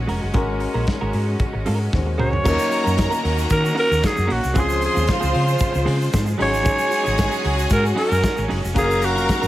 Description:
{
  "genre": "disco",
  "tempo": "114 BPM",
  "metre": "4/4",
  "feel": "straight",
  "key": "unclear",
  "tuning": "A4 = 442 Hz",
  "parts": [
    { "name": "warm grand piano", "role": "accompaniment", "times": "0.0-9.5 s", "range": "F3 to F5", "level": "-28 LUFS", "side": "left 4 dB", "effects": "none" },
    { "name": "clear studio string section", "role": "sustained chords", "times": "0.0-9.5 s", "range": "Db3 to F5", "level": "-28 LUFS", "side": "equal", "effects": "none" },
    { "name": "hollow-body short-scale fingered electric bass", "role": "bass", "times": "0.0-9.5 s", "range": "F1 to Eb3", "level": "-22 LUFS", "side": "equal", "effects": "none" },
    { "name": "clean electric guitar", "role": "accompaniment", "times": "0.1-9.5 s", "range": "Gb3 to Bb4", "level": "-29 LUFS", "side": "right 3 dB", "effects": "spring reverb" },
    { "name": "warm soul drum kit", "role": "drums", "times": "0.1-9.4 s", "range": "crash cymbal, hi-hat, kick drum, snare drum, toms", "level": "-24 LUFS", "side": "equal", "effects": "none" },
    { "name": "growling alto saxophone", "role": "melody", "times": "2.2-9.5 s", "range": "F4 to Db5", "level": "-22 LUFS", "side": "right 1 dB", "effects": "none" },
    { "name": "clear studio string section", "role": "second line", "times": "2.4-9.5 s", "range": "Ab4 to C6", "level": "-27 LUFS", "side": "right 1 dB", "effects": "none" },
    { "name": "egg shaker", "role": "percussion", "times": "2.5-9.5 s", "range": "none", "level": "-38 LUFS", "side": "right 3 dB", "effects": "none" }
  ],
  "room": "little or no reverb",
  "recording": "none",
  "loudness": "-17 LUFS",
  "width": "side -14 dB against mid",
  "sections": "0.0-2.5 A section; 2.5-9.5 B section",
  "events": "drum fill 1.9-2.5",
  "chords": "0.0 Ab9sus4; 2.5 Ebm7; 4.6 Dbmaj7; 6.4 Ab7sus4; 8.8 Gbmaj7"
}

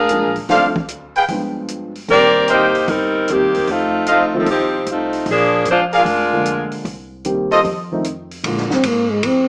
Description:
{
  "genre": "jazz, big band swing",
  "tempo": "151 BPM",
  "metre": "4/4",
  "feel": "swing 67% on 8ths",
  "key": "Bb mixolydian",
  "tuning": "A4 = 440 Hz",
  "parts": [
    { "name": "bright saxophone section", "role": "melody", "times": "0.0-6.7 s", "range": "Eb3 to F5", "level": "-14 LUFS", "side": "equal", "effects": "none" },
    { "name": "upright bass", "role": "bass", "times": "0.0-9.5 s", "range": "F1 to Bb2", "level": "-30 LUFS", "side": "equal", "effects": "none" },
    { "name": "warm grand piano", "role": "accompaniment", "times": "0.1-8.7 s", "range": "D3 to A4", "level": "-21 LUFS", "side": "equal", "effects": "none" },
    { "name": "open jazz drum kit", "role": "drums", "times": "0.1-9.4 s", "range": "hi-hat, kick drum, ride cymbal, snare drum", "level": "-26 LUFS", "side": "equal", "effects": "none" },
    { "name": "clear trumpet section", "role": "stabs", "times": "0.5-7.6 s", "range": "F4 to G5", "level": "-16 LUFS", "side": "equal", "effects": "none" },
    { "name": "breathy trombone", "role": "melody", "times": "8.7-9.5 s", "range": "Ab3 to C4", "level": "-14 LUFS", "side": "equal", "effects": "none" }
  ],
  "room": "moderate digital room reverb, RT60 1.1 s, small room ambience",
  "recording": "rough home demo mix, small speaker sound",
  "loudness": "-14 LUFS",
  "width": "side -32 dB against mid",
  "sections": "0.0-8.4 A section; 8.4-9.5 B section",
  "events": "trombone solo 8.4-9.5",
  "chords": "0.5 Dm7; 1.3 G7b9; 2.1 Cm7; 3.7 F7; 5.3 Bb7; 6.9 Cm7; 7.7 F7; 8.4 Bb7"
}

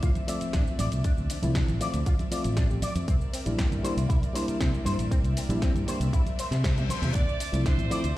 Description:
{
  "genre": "nu-disco, nu disco",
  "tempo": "118 BPM",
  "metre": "4/4",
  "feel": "straight",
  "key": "D minor",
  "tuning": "A4 = 440 Hz",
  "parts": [
    { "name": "dark studio string section", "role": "sustained chords", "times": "0.0-8.2 s", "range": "F3 to E5", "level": "-40 LUFS", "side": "left 2 dB", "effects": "sidechain pumping" },
    { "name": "electric guitar with an envelope filter", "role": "riff", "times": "0.0-8.0 s", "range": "C4 to D5", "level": "-37 LUFS", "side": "left 3 dB", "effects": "ensemble chorus, dub echo" },
    { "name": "fingered electric bass", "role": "bass", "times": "0.0-8.1 s", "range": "A1 to C3", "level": "-28 LUFS", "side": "equal", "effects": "sidechain pumping" },
    { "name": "electronic kick drum", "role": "drums", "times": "0.0-7.8 s", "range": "none", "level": "-25 LUFS", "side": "equal", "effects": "none" },
    { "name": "house drum kit", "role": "drums", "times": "0.0-8.1 s", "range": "cabasa, hi-hat, snare drum, toms", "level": "-36 LUFS", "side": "equal", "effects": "none" },
    { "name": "congas", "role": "percussion", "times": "0.2-7.9 s", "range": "none", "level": "-37 LUFS", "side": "right 2 dB", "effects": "none" },
    { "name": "reed electric piano", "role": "accompaniment", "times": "0.3-8.0 s", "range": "F3 to E5", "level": "-32 LUFS", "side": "equal", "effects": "sidechain pumping, dub echo" },
    { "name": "reverse cymbal", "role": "sound effects", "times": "6.4-7.1 s", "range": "none", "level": "-39 LUFS", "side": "left 6 dB", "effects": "none" },
    { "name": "rich chamber violin section", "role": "melody", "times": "7.2-8.2 s", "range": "C5 to D5", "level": "-34 LUFS", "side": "right 4 dB", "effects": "none" }
  ],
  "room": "light reverb, digital ambience",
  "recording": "played on a big sound system in a bare room, stone room reverb",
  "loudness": "-24 LUFS",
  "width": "side -16 dB against mid",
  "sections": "0.0-8.2 A section",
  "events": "reverse cymbal 6.4-7.1; drum fill 6.6-7.1",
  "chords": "0.0 Dm9; 3.1 C9; 7.1 Dm9"
}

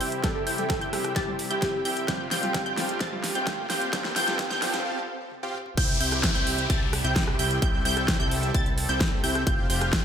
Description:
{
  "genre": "EDM, festival progressive house",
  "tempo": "130 BPM",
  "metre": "4/4",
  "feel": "straight",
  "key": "C major",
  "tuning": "A4 = 440 Hz",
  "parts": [
    { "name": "lush unison pad", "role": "sustained chords", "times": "0.0-10.0 s", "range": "C3 to A4", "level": "-34 LUFS", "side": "equal", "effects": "chorus, sidechain pumping" },
    { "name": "wide unison pluck", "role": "arpeggios", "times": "0.0-10.0 s", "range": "G6 to A6", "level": "-31 LUFS", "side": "equal", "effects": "phaser, sidechain pumping, ping-pong delay" },
    { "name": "dense compressed supersaw", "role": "riff", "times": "0.0-10.0 s", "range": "C4 to A5", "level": "-32 LUFS", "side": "right 1 dB", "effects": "sidechain pumping, low-pass filter, ping-pong delay" },
    { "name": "fat analog bass", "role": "bass", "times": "0.0-10.0 s", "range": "F1 to C2", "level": "-32 LUFS", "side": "equal", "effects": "sidechain pumping, high-pass filter" },
    { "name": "big-room dance drum kit", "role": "drums", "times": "0.0-10.0 s", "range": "crash cymbal, hi-hat, rim click, snare drum, toms", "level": "-30 LUFS", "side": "equal", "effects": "overdrive" },
    { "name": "riser and downlifter", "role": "sound effects", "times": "1.9-9.5 s", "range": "none", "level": "-35 LUFS", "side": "equal", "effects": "none" },
    { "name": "plucky unison lead", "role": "melody", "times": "0.2-1.7 s", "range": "G4 to A4", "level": "-32 LUFS", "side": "equal", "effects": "analog chorus, ping-pong delay" },
    { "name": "dark concert grand piano", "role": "accompaniment", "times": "0.2-4.7 s", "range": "E3 to C5", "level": "-36 LUFS", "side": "right 2 dB", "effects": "ensemble chorus, sidechain pumping, ping-pong delay" },
    { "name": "electronic kick drum", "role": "drums", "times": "0.2-10.0 s", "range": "none", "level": "-27 LUFS", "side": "equal", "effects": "none" }
  ],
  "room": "wet plate reverb, RT60 1.5 s, digital ambience",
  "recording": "dreamy mix soaked in reverb, high-pass filter",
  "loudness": "-23 LUFS",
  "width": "side -8 dB against mid",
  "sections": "0.0-5.8 A section; 5.8-10.0 B section",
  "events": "build-up 0.0-5.8; drum fill 0.0-4.9, 5.3-5.8; filter sweep on supersaw synth 0.0-5.8; break 4.9-5.8; drop 5.8-10.0",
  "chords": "0.0 C; 2.1 Fsus2; 5.8 C; 9.5 Fsus2"
}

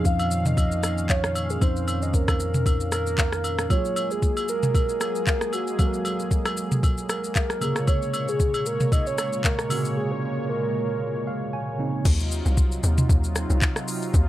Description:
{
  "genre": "amapiano",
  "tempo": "115 BPM",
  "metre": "4/4",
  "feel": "swing 55% on 16ths",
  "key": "Eb dorian",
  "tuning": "A4 = 440 Hz",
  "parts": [
    { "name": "soft octave-layered synth lead", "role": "melody", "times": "0.0-11.8 s", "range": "Gb4 to F5", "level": "-28 LUFS", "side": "right 1 dB", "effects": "chorus, phaser, tape echo" },
    { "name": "tine electric piano", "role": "accompaniment", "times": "0.0-12.1 s", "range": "C3 to Ab5", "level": "-31 LUFS", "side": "right 2 dB", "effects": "wide subtle chorus" },
    { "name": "warm analog pad", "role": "sustained chords", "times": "0.0-14.3 s", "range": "Bb2 to F5", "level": "-32 LUFS", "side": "equal", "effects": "chorus, sidechain pumping" },
    { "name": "fingered electric bass", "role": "bass", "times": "0.0-3.7 s", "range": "F2", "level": "-27 LUFS", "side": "equal", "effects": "none" },
    { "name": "smooth R&B drum kit", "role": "drums", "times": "0.1-14.3 s", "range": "crash cymbal, handclaps, hi-hat, kick drum, rim click, shaker, toms", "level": "-23 LUFS", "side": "equal", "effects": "none" },
    { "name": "agogo bells and woodblock", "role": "percussion", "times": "0.2-9.8 s", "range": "none", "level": "-33 LUFS", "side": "equal", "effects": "none" },
    { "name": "hollow log drum bass", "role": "bass", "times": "12.1-14.3 s", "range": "C2 to Eb2", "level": "-22 LUFS", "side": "equal", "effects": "none" }
  ],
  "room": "light reverb",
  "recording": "none",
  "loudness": "-21 LUFS",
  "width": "side -14 dB against mid",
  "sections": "0.0-12.1 A section; 12.1-14.3 B section",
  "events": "break 10.0-12.1; tine electric piano fill 11.0-12.1; drop 12.1-14.3",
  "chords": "0.0 Dbmaj9/F; 3.7 Gbmaj9; 7.6 Bbm9; 12.1 Ebm69"
}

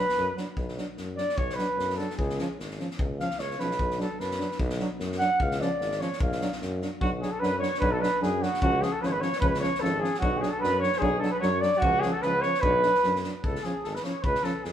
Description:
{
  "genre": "balkan folk, Balkan brass band",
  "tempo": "149 BPM",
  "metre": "2/4",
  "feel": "swing 55% on 16ths",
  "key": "B dorian sharp4",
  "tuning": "A4 = 439 Hz",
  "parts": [
    { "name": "mellow flugelhorn", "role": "melody", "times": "0.0-14.7 s", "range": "F#4 to F#5", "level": "-27 LUFS", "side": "right 1 dB", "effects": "none" },
    { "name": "mellow trumpet", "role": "second line", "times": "0.0-0.4, 7.0-14.7 s", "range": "F#4 to D5", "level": "-34 LUFS", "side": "left 2 dB", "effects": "none" },
    { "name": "warm euphonium", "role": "accompaniment", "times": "0.0-14.5 s", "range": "C#4 to D4", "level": "-35 LUFS", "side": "left 2 dB", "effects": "none" },
    { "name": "warm trombone", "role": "accompaniment", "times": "0.0-14.5 s", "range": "E#3 to F#3", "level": "-35 LUFS", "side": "right 3 dB", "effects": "none" },
    { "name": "unplugged drum kit", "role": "percussion", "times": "0.1-14.7 s", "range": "kick drum, snare drum", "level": "-33 LUFS", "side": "left 1 dB", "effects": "none" },
    { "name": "clear tuba", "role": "bass", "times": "0.2-14.7 s", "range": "G#1 to F#2", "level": "-33 LUFS", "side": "equal", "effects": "none" }
  ],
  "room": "wet stone room reverb, RT60 1.5 s",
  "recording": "band playing live in one room",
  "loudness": "-24 LUFS",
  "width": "side -10 dB against mid",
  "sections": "0.6-7.0 A section; 7.0-13.4 B section; 13.4-14.7 C section",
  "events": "flugelhorn solo 0.6-7.0",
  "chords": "0.0 Bm; 2.2 C#; 3.8 Bm; 5.4 C#; 6.2 Bm; 8.6 C#; 10.2 Bm; 11.8 C#; 12.6 Bm; 13.4 C#"
}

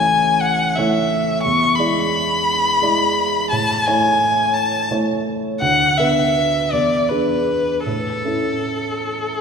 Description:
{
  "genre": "classical, romantic duo for violin and grand piano",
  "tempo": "51-60 BPM (dotted quarters)",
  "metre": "6/8",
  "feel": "rubato",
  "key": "A major",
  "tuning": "A4 = 440 Hz",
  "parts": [
    { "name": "rich violin", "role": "melody", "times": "0.0-9.4 s", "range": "A4 to C#6", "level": "-17 LUFS", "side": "left 2 dB", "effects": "none" },
    { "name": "dark baby grand piano", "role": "accompaniment", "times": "0.0-9.4 s", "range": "A1 to D5", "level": "-21 LUFS", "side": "right 2 dB", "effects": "none" }
  ],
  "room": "wet concert hall reverb, RT60 2.2 s",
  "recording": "recorded in a church or concert hall",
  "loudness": "-16 LUFS",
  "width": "side -6 dB against mid",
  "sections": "0.0-9.4 A section",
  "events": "none",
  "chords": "0.0 A; 1.4 E7; 3.5 A; 5.6 Bm/D; 6.7 E7; 7.9 A"
}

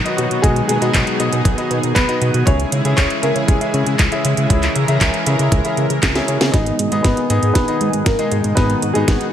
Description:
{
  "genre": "italo disco",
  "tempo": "118 BPM",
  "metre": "4/4",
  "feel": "straight",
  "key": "G# minor",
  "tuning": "A4 = 440 Hz",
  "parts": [
    { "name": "lush unison pad", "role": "sustained chords", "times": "0.0-9.3 s", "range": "B2 to A#4", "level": "-22 LUFS", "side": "equal", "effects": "chorus, vintage 12-bit sampler grit" },
    { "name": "bright concert grand piano", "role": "stabs", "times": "0.1-9.3 s", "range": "G#3 to E5", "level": "-23 LUFS", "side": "left 2 dB", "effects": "tape echo" },
    { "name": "house drum kit", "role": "drums", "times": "0.1-9.3 s", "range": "handclaps, hi-hat, snare drum", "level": "-22 LUFS", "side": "right 1 dB", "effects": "studio reverb" },
    { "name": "clear grand piano", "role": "melody", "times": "0.2-9.3 s", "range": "F#3 to D#5", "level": "-22 LUFS", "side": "left 1 dB", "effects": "low-pass filter, tape echo" },
    { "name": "chorused synth bass", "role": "bass", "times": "0.2-9.2 s", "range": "G#1 to C#3", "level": "-20 LUFS", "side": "equal", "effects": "none" },
    { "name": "electronic kick drum", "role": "drums", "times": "0.4-9.2 s", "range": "none", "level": "-17 LUFS", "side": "equal", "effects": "studio reverb" }
  ],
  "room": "light reverb",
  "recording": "none",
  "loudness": "-14 LUFS",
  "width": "side -10 dB against mid",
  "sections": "0.0-6.5 A section; 6.5-9.3 B section",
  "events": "drum fill 6.0-6.5, 6.5-9.3; filter sweep on analog synth pad 6.5-9.3; filter sweep on grand piano 6.5-9.3",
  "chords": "0.0 B; 2.5 C#m; 6.5 G#m"
}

